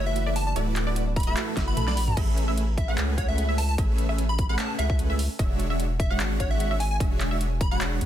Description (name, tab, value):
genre	future bass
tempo	149 BPM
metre	4/4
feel	swing 54% on 16ths, half-time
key	A major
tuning	A4 = 440 Hz
part	plucky unison lead	melody	0.0-7.8 s	C#5 to B5	-33 LUFS	equal	sidechain pumping, dub echo
part	ethereal airy pad	sustained chords	0.0-2.1 s	E3 to F#4	-40 LUFS	equal	ensemble chorus, built-in reverb, phaser, sidechain pumping
part	wide unison pluck	arpeggios	0.0-8.0 s	D5 to F#5	-36 LUFS	right 2 dB	vintage 12-bit sampler grit, sidechain pumping
part	dense compressed supersaw	riff	0.0-8.0 s	G#3 to F#5	-31 LUFS	right 1 dB	sidechain pumping
part	saturated sub bass	bass	0.0-8.1 s	D1 to E2	-26 LUFS	equal	sidechain pumping
part	thumb-piano-like synth pluck	arpeggios	0.1-2.1 s	F#4 to A5	-40 LUFS	right 4 dB	chorus, sidechain pumping, dub echo
part	big-room dance drum kit	drums	0.2-8.1 s	crash cymbal, handclaps, hi-hat, snare drum, toms	-32 LUFS	equal	overdrive
part	electronic kick drum	drums	1.2-7.7 s	none	-26 LUFS	equal	overdrive
room	little or no reverb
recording	dense, heavily limited modern master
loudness	-23 LUFS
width	side -11 dB against mid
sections	0.0-2.2 A section; 2.2-8.1 A section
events	drop 0.0-2.2, 2.2-8.1; drum fill 1.6-2.2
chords	0.0 D69; 2.2 Amaj9; 5.4 E13